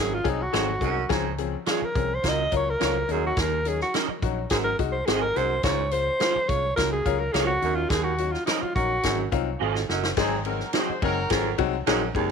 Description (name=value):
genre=uptempo 1960s-style soul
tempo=106 BPM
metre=4/4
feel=straight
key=unclear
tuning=A4 = 440 Hz
part: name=warm alto saxophone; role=melody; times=0.0-9.3 s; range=Eb4 to Eb5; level=-26 LUFS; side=equal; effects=none
part: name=clear upright piano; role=accompaniment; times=0.0-12.3 s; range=F3 to F5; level=-29 LUFS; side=left 14 dB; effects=none
part: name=warm baritone saxophone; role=riff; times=0.0-12.3 s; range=Eb2 to Ab2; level=-31 LUFS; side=right 14 dB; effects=none
part: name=vintage muted fingered electric bass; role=bass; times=0.0-12.3 s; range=Gb1 to Eb2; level=-31 LUFS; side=equal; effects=none
part: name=swinging big-band drum kit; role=drums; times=0.2-12.3 s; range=crash cymbal, hi-hat, kick drum, ride cymbal, snare drum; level=-29 LUFS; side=equal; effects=none
part: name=electric guitar through a small old amp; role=stabs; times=0.5-12.0 s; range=C4 to F5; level=-30 LUFS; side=right 15 dB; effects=ensemble chorus
part: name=warm horn section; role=second line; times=10.2-11.6 s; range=C4 to C5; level=-30 LUFS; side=equal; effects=none
room=light reverb, studio ambience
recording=1960s-style stereo with parts hard left and right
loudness=-22 LUFS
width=side -6 dB against mid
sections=0.0-10.2 A section; 10.2-12.3 B section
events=alto saxophone solo 0.0-10.2; drum fill 9.6-10.2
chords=0.0 Ab7; 1.1 Dbmaj7; 2.2 Gbmaj7/Db; 3.1 Ebm7; 4.5 Ab7; 5.6 Dbmaj7; 6.8 Gbmaj7/Db; 7.6 Ebm7; 9.0 Ab7